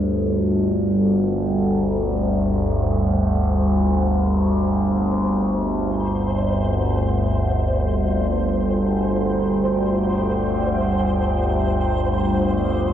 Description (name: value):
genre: dark ambient drone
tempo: free time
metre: none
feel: none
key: unclear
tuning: A4 = 441 Hz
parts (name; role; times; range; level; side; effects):
- deep dark ambient pad; sustained chords; 0.0-12.9 s; G3 to A5; -22 LUFS; equal; chorus, built-in reverb
- overtone-sweeping drone; drone; 0.0-12.9 s; G1 to D2; -20 LUFS; equal; chorus, built-in reverb, phaser
- flickering grainy texture; texture; 6.0-12.9 s; C5; -30 LUFS; equal; built-in reverb
room: wet cathedral reverb, RT60 6.2 s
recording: dark, warm production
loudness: -18 LUFS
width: side -10 dB against mid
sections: 0.0-12.9 A section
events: none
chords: 0.0 G5; 5.8 F/G